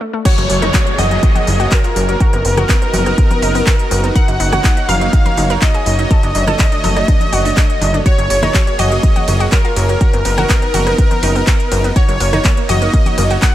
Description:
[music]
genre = progressive house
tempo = 123 BPM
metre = 4/4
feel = straight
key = F# major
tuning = A4 = 444 Hz
[part]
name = analog pluck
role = arpeggios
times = 0.0-13.5 s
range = F#3 to A#4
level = -22 LUFS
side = equal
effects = chorus, sidechain pumping, ping-pong delay
[part]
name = wide unison lead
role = melody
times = 0.3-13.5 s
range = A#4 to F#5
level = -19 LUFS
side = equal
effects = sidechain pumping, ping-pong delay
[part]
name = glassy wavetable pluck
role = second line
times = 0.3-13.5 s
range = A#4 to F#5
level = -26 LUFS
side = equal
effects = none
[part]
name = supersaw pad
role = sustained chords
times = 0.3-13.5 s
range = D3 to D#5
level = -24 LUFS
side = right 2 dB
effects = sidechain pumping
[part]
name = deep house drum kit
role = drums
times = 0.3-13.5 s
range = crash cymbal, handclaps, hi-hat, ride cymbal, rim click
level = -21 LUFS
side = equal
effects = none
[part]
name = electronic kick drum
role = drums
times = 0.3-13.5 s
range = none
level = -13 LUFS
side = equal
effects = high-pass filter on kick
[part]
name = downlifter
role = sound effects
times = 0.3-4.2 s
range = none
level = -26 LUFS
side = left 1 dB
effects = none
[part]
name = plucky analog bass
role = bass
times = 0.4-13.4 s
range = F#1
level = -16 LUFS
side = equal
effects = sidechain pumping
[part]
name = congas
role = percussion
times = 0.6-13.3 s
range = none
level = -24 LUFS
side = left 2 dB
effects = sidechain pumping on perc
[sound]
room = digital ambience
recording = none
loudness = -11 LUFS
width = side -13 dB against mid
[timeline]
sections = 0.3-13.5 A section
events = break 0.0; drop 0.3-13.5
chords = 0.3 F#add9; 2.2 B/F#; 4.2 D#m7/F#; 6.1 Dmaj7/F#; 8.1 F#add9; 10.0 B/F#; 12.0 D#m7/F#

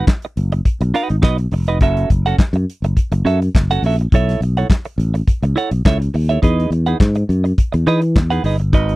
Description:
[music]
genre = disco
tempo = 104 BPM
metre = 4/4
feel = straight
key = unclear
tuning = A4 = 440 Hz
[part]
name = clean electric guitar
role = accompaniment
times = 0.0-9.0 s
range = C#4 to F#5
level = -19 LUFS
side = right 4 dB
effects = none
[part]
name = damped 70s drum kit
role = drums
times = 0.1-9.0 s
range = handclaps, hi-hat, kick drum, snare drum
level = -14 LUFS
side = equal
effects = none
[part]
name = fingered electric bass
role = bass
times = 0.4-9.0 s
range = E#1 to E3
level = -16 LUFS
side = left 1 dB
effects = none
[sound]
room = little or no reverb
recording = dry, close 1970s-style studio recording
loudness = -14 LUFS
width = side -19 dB against mid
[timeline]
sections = 0.0-9.0 A section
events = none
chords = 0.0 G#m7 (rootless); 1.8 F#m7; 4.1 B9sus4; 6.4 Emaj7

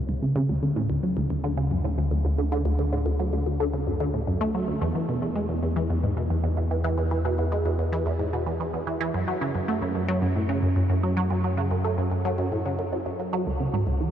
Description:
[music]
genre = ambient, sequencer-driven space music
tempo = 111 BPM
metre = 4/4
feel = straight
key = D major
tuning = A4 = 440 Hz
[part]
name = warm sub bass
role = bass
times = 0.0-14.1 s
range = C#2 to F#2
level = -28 LUFS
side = equal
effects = none
[part]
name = resonant blip pluck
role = riff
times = 0.1-14.1 s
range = C#2 to A3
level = -25 LUFS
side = equal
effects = phaser, tape echo
[sound]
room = wet huge ambient reverb, RT60 7.3 s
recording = dark, warm production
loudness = -23 LUFS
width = side -10 dB against mid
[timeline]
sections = 0.0-14.1 A section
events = none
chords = 0.5 D; 4.8 E5; 9.1 F#5; 13.5 C#m

